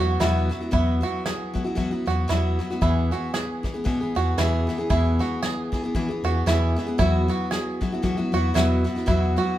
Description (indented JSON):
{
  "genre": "acoustic folk duo or small band",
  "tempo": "115 BPM",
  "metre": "4/4",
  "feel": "swing 58% on 8ths",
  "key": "E major",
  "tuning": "A4 = 441 Hz",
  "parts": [
    { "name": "picked steel-string acoustic guitar", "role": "accompaniment", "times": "0.0-9.6 s", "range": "E2 to G#4", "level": "-25 LUFS", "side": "left 2 dB", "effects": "none" },
    { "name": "bluegrass banjo", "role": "arpeggios", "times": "0.0-9.6 s", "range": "E4 to G#4", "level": "-28 LUFS", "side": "right 5 dB", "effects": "none" },
    { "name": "hollow-body short-scale fingered electric bass", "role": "bass", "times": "0.0-9.4 s", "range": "E2", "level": "-24 LUFS", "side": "equal", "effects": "none" },
    { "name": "soft brush drum kit", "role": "drums", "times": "0.2-9.4 s", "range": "kick drum, snare drum", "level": "-29 LUFS", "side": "equal", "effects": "none" }
  ],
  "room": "moderate large studio reverb, RT60 1.3 s",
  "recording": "minimal, uncompressed stereo recording",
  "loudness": "-21 LUFS",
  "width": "side -13 dB against mid",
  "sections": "0.0-9.6 A section",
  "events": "none",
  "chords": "0.0 E"
}